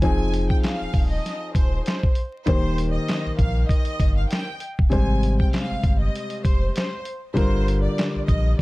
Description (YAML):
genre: hip hop, boom-bap hip-hop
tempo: 98 BPM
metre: 4/4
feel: swing 56% on 16ths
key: Eb major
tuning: A4 = 441 Hz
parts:
  - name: rich studio violin section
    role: melody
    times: 0.0-8.6 s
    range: C5 to Ab5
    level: -31 LUFS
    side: equal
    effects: none
  - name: dark grand piano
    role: accompaniment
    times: 0.0-8.6 s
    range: C3 to C5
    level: -26 LUFS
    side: left 2 dB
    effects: none
  - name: warm sub bass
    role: bass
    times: 0.0-8.5 s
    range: Eb1 to Bb1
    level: -23 LUFS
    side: equal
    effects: none
  - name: dusty soul sampler-style drum kit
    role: drums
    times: 0.0-8.6 s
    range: handclaps, hi-hat, kick drum, snare drum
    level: -21 LUFS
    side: equal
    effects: none
room: little or no reverb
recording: dark, warm production, vinyl crackle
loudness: -20 LUFS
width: side -21 dB against mid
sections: 0.0-8.6 A section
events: none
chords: 0.0 Fm7; 2.5 Eb6; 4.9 Abmaj7; 7.4 Gm7